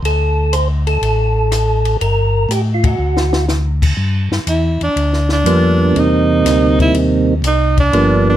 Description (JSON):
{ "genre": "soul jazz organ trio", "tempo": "122 BPM", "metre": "4/4", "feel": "swing 68% on 8ths", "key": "unclear", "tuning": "A4 = 436 Hz", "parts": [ { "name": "mellow tonewheel organ", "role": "bass", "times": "0.0-8.4 s", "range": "G1 to A2", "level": "-16 LUFS", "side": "equal", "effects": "slow rotary speaker" }, { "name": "compact cocktail drum kit", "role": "drums", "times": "0.0-8.1 s", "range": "crash cymbal, hi-hat, kick drum, ride cymbal, rim click, snare drum", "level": "-21 LUFS", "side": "left 2 dB", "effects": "none" }, { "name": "percussive tonewheel organ", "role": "melody", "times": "0.1-8.4 s", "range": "C3 to C5", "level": "-15 LUFS", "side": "right 2 dB", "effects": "slow rotary speaker" }, { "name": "clear tenor saxophone", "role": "melody", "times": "4.5-8.4 s", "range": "D4 to E4", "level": "-17 LUFS", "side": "right 2 dB", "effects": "none" } ], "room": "light reverb", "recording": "none", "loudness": "-12 LUFS", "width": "side -12 dB against mid", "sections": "0.0-4.0 A section; 4.0-8.4 B section", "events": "band accent 2.8; drum fill 3.0-3.5; tenor saxophone solo 4.0-8.4", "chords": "0.0 D5; 2.0 Gm; 3.0 D; 4.0 G7#9; 6.0 C7#9", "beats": "| 0.04 0.53 1.03 1.52 | 2.01 2.51 3.00 3.49 | 3.98 4.48 4.97 5.46 | 5.96 6.45 6.94 7.44 | 7.93" }